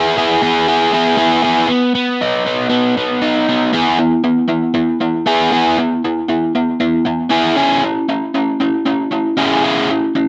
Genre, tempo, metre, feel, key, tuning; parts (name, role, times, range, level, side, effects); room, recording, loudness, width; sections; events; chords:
rock; 117 BPM; 4/4; straight; E major; A4 = 440 Hz
crunchy overdriven guitar; solo; 0.0-10.3 s; B3 to G#4; -15 LUFS; equal; slapback echo
little or no reverb; recorded outdoors, with no room sound; -15 LUFS; mono
0.0-1.7 A section; 1.7-3.7 B section; 3.7-10.3 C section
0.0 E; 1.7 B; 3.7 E; 7.6 C#m